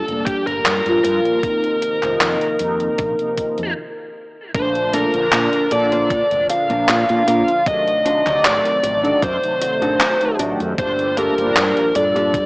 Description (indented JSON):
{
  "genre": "vaporwave",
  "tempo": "77 BPM",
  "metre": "4/4",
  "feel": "straight",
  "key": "Bb major",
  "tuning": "A4 = 435 Hz",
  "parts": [
    { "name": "biting lead guitar", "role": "melody", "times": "0.0-12.5 s", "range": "G4 to F5", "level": "-18 LUFS", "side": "equal", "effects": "overdrive, vintage 12-bit sampler grit, tape echo" },
    { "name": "mellow synth brass", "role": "accompaniment", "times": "0.0-12.5 s", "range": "Bb2 to D5", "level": "-22 LUFS", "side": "equal", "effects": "phaser, analog chorus" },
    { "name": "mellow fretless electric bass", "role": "bass", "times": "0.1-12.4 s", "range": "F1 to Bb2", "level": "-26 LUFS", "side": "equal", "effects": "tube saturation" },
    { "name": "detuned 8-bit digital drum machine", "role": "drums", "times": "0.1-12.5 s", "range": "handclaps, hi-hat", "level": "-20 LUFS", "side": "equal", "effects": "small room ambience, gated reverb" },
    { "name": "electronic kick drum", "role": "drums", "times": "0.3-12.5 s", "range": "none", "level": "-24 LUFS", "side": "equal", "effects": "small room ambience" },
    { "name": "mellow electric guitar", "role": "riff", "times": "4.9-12.3 s", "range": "Bb3 to D5", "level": "-24 LUFS", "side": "equal", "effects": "lush chorus" }
  ],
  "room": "light reverb, digital ambience",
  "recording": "cassette tape, small speaker sound",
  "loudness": "-15 LUFS",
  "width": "side -26 dB against mid",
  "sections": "0.0-4.6 A section; 4.6-12.5 B section",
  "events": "stop 3.8-4.6",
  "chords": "0.0 Gm7; 1.4 F7sus4; 4.6 Bbmaj7; 7.7 D7b9; 10.8 Gm9"
}